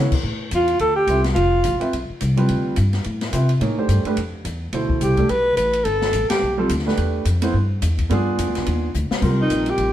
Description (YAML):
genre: modal jazz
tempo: 214 BPM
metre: 4/4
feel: swing 59% on 8ths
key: D dorian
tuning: A4 = 440 Hz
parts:
  - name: warm grand piano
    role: accompaniment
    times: 0.0-9.9 s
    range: B2 to E5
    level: -23 LUFS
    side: right 2 dB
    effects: none
  - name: upright bass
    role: bass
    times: 0.0-9.9 s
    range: F1 to C#3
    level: -21 LUFS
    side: equal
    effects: none
  - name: open jazz drum kit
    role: drums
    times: 0.1-9.9 s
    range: crash cymbal, hi-hat, kick drum, ride cymbal, snare drum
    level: -28 LUFS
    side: left 2 dB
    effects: none
  - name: breathy alto saxophone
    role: melody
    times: 0.5-1.9, 5.0-6.6, 9.4-9.9 s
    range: Eb4 to B4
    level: -19 LUFS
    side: equal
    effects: none
room: moderate stone room reverb, RT60 1.2 s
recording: band playing live in one room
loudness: -17 LUFS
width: side -12 dB against mid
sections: 0.2-9.2 A section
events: band accent 6.3; drum fill 8.9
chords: 0.2 Dm9; 4.7 Em; 8.1 G7b9; 9.2 Cm7